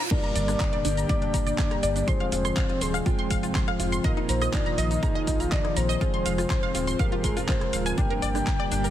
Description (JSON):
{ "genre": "progressive house", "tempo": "122 BPM", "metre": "4/4", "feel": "straight", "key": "unclear", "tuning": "A4 = 445 Hz", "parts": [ { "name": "tight sequenced synth", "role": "arpeggios", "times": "0.0-8.9 s", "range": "D4 to C6", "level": "-32 LUFS", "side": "equal", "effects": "chorus, phaser, sidechain pumping, dub echo" }, { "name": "riser, reverse cymbal and impact", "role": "sound effects", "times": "0.0-2.1 s", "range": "none", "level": "-35 LUFS", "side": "right 1 dB", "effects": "none" }, { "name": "soft octave-layered synth lead", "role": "melody", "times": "0.1-8.9 s", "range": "Ab4 to G5", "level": "-31 LUFS", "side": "left 2 dB", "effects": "chorus, tremolo, sidechain pumping, ping-pong delay" }, { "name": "airy breathy pad", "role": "sustained chords", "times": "0.1-8.9 s", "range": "Ab2 to G4", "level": "-32 LUFS", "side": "left 1 dB", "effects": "chorus, sidechain pumping" }, { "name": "dark concert grand piano", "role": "stabs", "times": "0.1-8.9 s", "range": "G2 to G5", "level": "-32 LUFS", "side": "right 2 dB", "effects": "sidechain pumping, dub echo" }, { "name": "electronic kick drum", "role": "drums", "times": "0.1-8.6 s", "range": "none", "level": "-26 LUFS", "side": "equal", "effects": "none" }, { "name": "pop drum kit", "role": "drums", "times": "0.1-8.9 s", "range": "crash cymbal, handclaps, hi-hat, rim click, shaker", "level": "-34 LUFS", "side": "equal", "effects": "none" }, { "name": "round analog bass", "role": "bass", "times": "0.4-8.9 s", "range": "Eb1 to Bb1", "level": "-29 LUFS", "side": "equal", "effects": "sidechain pumping, high-pass filter" } ], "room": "digital ambience", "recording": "heavily compressed radio sound", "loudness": "-23 LUFS", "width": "side -11 dB against mid", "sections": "0.1-8.9 A section", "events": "drop 0.1-8.9; impact 0.1-2.1", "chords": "0.1 Gm; 2.1 Fm; 4.0 Bbsus4; 6.0 Fm; 8.0 Gm" }